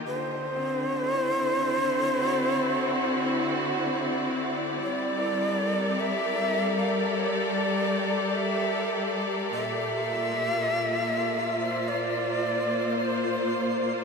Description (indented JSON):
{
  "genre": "ambient",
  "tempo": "51 BPM",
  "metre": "4/4",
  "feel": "straight",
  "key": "unclear",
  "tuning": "A4 = 440 Hz",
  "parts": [
    { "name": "bright symphonic string section", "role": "sustained chords", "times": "0.0-14.0 s", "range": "Bb2 to D5", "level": "-27 LUFS", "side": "equal", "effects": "none" },
    { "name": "breathy bright shakuhachi", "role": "melody", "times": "0.1-13.9 s", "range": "C5 to F5", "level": "-28 LUFS", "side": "equal", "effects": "ping-pong delay" },
    { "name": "twinkling granular texture", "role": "texture", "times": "6.9-14.0 s", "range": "C6", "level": "-43 LUFS", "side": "equal", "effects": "none" }
  ],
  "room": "wet shimmer reverb, RT60 6.4 s",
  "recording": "none",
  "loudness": "-24 LUFS",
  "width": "side -5 dB against mid",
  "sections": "0.0-4.8 A section; 4.8-14.0 B section",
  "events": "none",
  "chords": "0.1 D7; 4.8 Gmadd9; 9.5 Bbadd9"
}